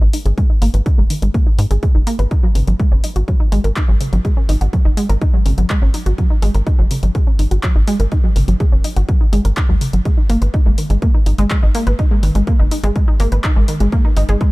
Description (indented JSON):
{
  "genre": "melodic techno",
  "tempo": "124 BPM",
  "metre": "4/4",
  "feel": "straight",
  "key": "G# minor",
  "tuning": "A4 = 439 Hz",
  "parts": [
    { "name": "analog pluck", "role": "arpeggios", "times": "0.0-14.5 s", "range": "C#3 to B4", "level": "-22 LUFS", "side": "equal", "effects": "chorus, sidechain pumping, tape echo" },
    { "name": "tight sequencer bass", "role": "bass", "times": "0.0-14.4 s", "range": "F#1 to G#2", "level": "-15 LUFS", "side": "equal", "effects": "sidechain pumping" },
    { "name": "punchy analog drum machine", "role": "drums", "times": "0.1-14.5 s", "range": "handclaps, hi-hat", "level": "-28 LUFS", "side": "left 1 dB", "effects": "overdrive, sidechain pumping on hats" },
    { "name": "electronic kick drum", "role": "drums", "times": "0.4-14.5 s", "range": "none", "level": "-14 LUFS", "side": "equal", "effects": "none" }
  ],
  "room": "digital ambience",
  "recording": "none",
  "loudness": "-13 LUFS",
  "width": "side -21 dB against mid",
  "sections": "0.0-14.5 A section",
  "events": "filter sweep on synth arpeggio sound 0.0-14.5",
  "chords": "0.0 G#5; 2.3 F#5; 10.1 G#5"
}